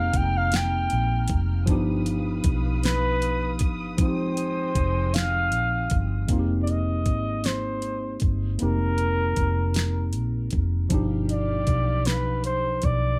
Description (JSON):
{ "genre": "slow six-eight R&B", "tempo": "52 BPM (dotted quarters)", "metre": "6/8", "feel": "straight", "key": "F minor", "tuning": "A4 = 441 Hz", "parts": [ { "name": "breathy flugelhorn", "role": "melody", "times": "0.0-13.2 s", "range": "Bb4 to G5", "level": "-30 LUFS", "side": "equal", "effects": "none" }, { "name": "tine electric piano", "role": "accompaniment", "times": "0.0-13.2 s", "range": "B2 to G4", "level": "-31 LUFS", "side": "equal", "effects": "none" }, { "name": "muted studio string section", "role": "sustained chords", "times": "0.0-6.3, 10.9-13.2 s", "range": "Ab3 to F6", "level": "-42 LUFS", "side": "equal", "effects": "none" }, { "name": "vintage muted fingered electric bass", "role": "bass", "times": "0.0-13.2 s", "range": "F1 to B1", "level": "-28 LUFS", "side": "equal", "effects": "none" }, { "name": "smooth R&B drum kit", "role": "drums", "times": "0.1-13.0 s", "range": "hi-hat, kick drum, snare drum", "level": "-27 LUFS", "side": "equal", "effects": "none" } ], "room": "light reverb", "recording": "none", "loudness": "-24 LUFS", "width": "mono", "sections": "0.0-6.3 A section; 6.3-13.2 B section", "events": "none", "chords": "0.0 Fm11; 1.7 G7b13; 4.0 Fm11; 10.9 G7b13" }